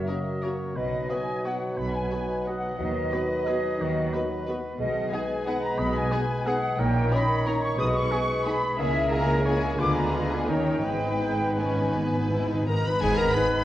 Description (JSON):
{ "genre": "classical, orchestral ballroom waltz", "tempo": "155-200 BPM", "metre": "3/4", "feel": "rubato", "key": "B major, G# minor from 4.8 s", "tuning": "A4 = 444 Hz", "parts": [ { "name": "dark studio violin section", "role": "second line", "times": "0.0-13.6 s", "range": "G#4 to D#6", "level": "-36 LUFS", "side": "left 2 dB", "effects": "none" }, { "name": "mellow flute section", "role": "second line", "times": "0.0-13.6 s", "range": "D#5 to D#6", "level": "-32 LUFS", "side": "equal", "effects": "none" }, { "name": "warm clarinet", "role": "second line", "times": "0.0-13.6 s", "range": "D#4 to C#5", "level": "-32 LUFS", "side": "left 1 dB", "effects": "none" }, { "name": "warm oboe", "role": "second line", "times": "0.0-13.6 s", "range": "F#4 to B5", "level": "-36 LUFS", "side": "right 1 dB", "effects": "none" }, { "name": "dark bassoon", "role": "accompaniment", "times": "0.0-13.6 s", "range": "D#3 to C#4", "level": "-33 LUFS", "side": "right 1 dB", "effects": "none" }, { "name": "concert harp", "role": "arpeggios", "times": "0.0-13.6 s", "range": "F#2 to B5", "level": "-34 LUFS", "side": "left 4 dB", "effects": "none" }, { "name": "warm studio cello section", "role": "bass", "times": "0.0-13.3 s", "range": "G#2 to D#3", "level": "-33 LUFS", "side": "right 2 dB", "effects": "none" }, { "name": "warm studio double bass section", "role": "bass", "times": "0.0-13.3 s", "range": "G#1 to D#2", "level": "-32 LUFS", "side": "right 1 dB", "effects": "none" }, { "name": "rich studio violin section", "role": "melody", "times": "0.1-13.6 s", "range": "G#4 to B5", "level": "-35 LUFS", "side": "left 2 dB", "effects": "none" }, { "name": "warm studio viola section", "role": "accompaniment", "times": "0.1-13.4 s", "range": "G#3 to G#4", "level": "-36 LUFS", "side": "right 1 dB", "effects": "none" }, { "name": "warm French horn section", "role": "sustained chords", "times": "0.1-13.6 s", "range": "A#3 to Ab4", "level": "-37 LUFS", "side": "left 2 dB", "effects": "none" }, { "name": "cymbal swell, clash cymbals and concert bass drum", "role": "percussion", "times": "10.8-13.6 s", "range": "none", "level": "-35 LUFS", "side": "equal", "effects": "none" }, { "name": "timpani", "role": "percussion", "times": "10.8-13.0 s", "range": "G#2", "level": "-31 LUFS", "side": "equal", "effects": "none" }, { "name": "mellow trumpet section", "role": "stabs", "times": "12.7-13.6 s", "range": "G#4 to B4", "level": "-29 LUFS", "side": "equal", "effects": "none" } ], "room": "wet scoring stage reverb, RT60 1.6 s", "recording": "worn, warbling old tape, cassette tape, warbly pitch drift", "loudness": "-23 LUFS", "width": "side -13 dB against mid", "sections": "0.0-13.0 A section", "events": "timpani fill 10.8-13.0; band accent 13.0-13.3", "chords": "0.0 F#7; 0.8 B; 2.8 B/D#; 4.8 G#m/B; 6.8 D#7/A#; 7.8 G#m/B; 8.8 A#m7b5/C#; 9.8 Ddim7; 10.5 D#7; 10.8 G#m" }